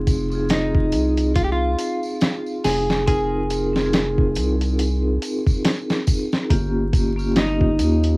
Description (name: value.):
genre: trip hop.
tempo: 70 BPM.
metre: 4/4.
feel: swing 58% on 16ths.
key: F minor.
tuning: A4 = 440 Hz.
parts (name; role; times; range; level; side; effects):
vibraphone with medium hard mallets; accompaniment; 0.0-8.2 s; Bb3 to Bb4; -24 LUFS; equal; tremolo, cassette tape.
round analog bass; bass; 0.0-8.2 s; F1 to Eb2; -22 LUFS; equal; none.
dusty soul sampler-style drum kit; drums; 0.1-8.2 s; hi-hat, kick drum, snare drum; -20 LUFS; equal; cassette tape.
tambourine; percussion; 0.1-8.2 s; none; -37 LUFS; right 1 dB; none.
semi-hollow electric guitar; melody; 0.5-8.2 s; Eb4 to Ab4; -23 LUFS; equal; tape echo.
room: light reverb.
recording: home recording on cassette, vinyl crackle.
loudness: -18 LUFS.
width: side -26 dB against mid.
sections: 0.0-8.2 A section.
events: none.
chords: 0.0 Fm7; 6.5 Gm7b5.